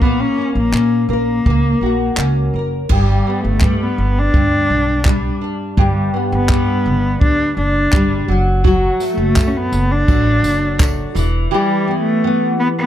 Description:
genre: acoustic pop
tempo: 84 BPM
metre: 4/4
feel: straight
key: unclear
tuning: A4 = 442 Hz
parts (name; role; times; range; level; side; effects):
- warm cello; melody; 0.0-12.9 s; F#3 to D4; -18 LUFS; equal; plate reverb
- nylon-string guitar; accompaniment; 0.0-12.9 s; G2 to A#4; -19 LUFS; left 1 dB; double-tracked left and right, plate reverb
- upright bass; bass; 0.0-11.4 s; E1 to A#2; -18 LUFS; equal; none
- compact cocktail drum kit; drums; 0.0-11.3 s; crash cymbal, handclaps, kick drum, tambourine; -16 LUFS; equal; none
- tambourine; percussion; 8.7-11.3 s; none; -37 LUFS; right 9 dB; none
room: light reverb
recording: dark, warm production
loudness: -13 LUFS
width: side -11 dB against mid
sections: 0.0-2.9 A section; 2.9-12.9 B section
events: none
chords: 0.0 F#/A#; 2.9 G; 8.3 D/F#; 11.2 Em

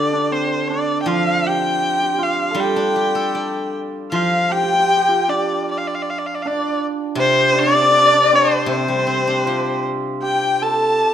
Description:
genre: chinese traditional, Chinese chamber ensemble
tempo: 79 BPM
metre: 2/4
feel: rubato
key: G shang mode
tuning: A4 = 440 Hz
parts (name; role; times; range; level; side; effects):
- clear erhu; melody; 0.0-11.1 s; C5 to A5; -18 LUFS; left 1 dB; none
- hammered dulcimer; second line; 0.0-11.1 s; C4 to A4; -23 LUFS; right 5 dB; none
- steel-string zither; accompaniment; 0.0-11.0 s; C3 to D5; -24 LUFS; left 2 dB; none
- dizi; second line; 4.1-11.1 s; C5 to A5; -22 LUFS; left 6 dB; none
room: moderate recital hall reverb, RT60 1.3 s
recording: none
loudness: -16 LUFS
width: side -9 dB against mid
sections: 0.0-4.1 A section; 4.1-11.1 B section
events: none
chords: none

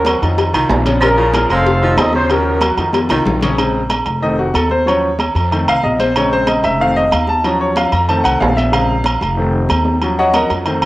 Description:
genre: latin, salsa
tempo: 187 BPM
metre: 4/4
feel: straight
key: Bb harmonic minor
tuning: A4 = 441 Hz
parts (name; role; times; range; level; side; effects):
- mellow trumpet section; melody; 0.0-2.9 s; Db4 to F5; -17 LUFS; equal; cassette tape, analog delay
- bright baritone saxophone; second line; 0.0-3.4 s; Db3 to Ab3; -23 LUFS; right 2 dB; none
- upright bass; bass; 0.0-10.9 s; F1 to F2; -19 LUFS; equal; none
- congas; percussion; 0.0-10.9 s; none; -23 LUFS; left 1 dB; none
- bright upright piano; accompaniment; 0.1-10.9 s; C3 to Bb5; -16 LUFS; left 1 dB; none
- agogo bells and timbales; percussion; 0.1-10.9 s; none; -19 LUFS; right 3 dB; none
- cowbell and bongos; percussion; 0.1-3.6 s; none; -22 LUFS; left 4 dB; none
room: moderate spring reverb, RT60 1.6 s, studio ambience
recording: home recording on cassette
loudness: -12 LUFS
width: side -17 dB against mid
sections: 0.0-3.6 A section; 3.6-10.9 B section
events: drum fill 2.9-3.6; upright piano solo 3.6-10.9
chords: 0.4 F5; 1.0 Bbm7; 1.7 F7; 2.3 Ebm7; 2.9 F5; 3.6 Bbm7; 4.2 F7; 4.9 Ebm7; 5.5 F7; 6.2 Bbm7; 6.8 F7; 7.4 Ebm7; 8.1 F7; 8.7 Bbm7; 9.4 F7; 10.0 Ebm7

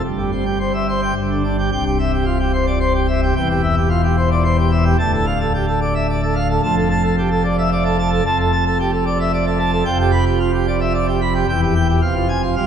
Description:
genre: classical, organ toccata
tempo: 110 BPM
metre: 3/4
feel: straight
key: C major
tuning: A4 = 440 Hz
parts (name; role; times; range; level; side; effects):
- pipe organ, plenum; solo; 0.0-12.7 s; C1 to B5; -15 LUFS; equal; none
room: wet church reverb, RT60 2.5 s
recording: heard from further back in the room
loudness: -15 LUFS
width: side -8 dB against mid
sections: 0.0-1.7 A section; 1.7-12.7 B section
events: none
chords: 0.0 C/G; 1.2 G5; 1.7 C; 3.4 C/E; 5.0 Dm; 6.6 Dm/F; 9.9 G7/F; 11.5 Em; 12.0 Fm

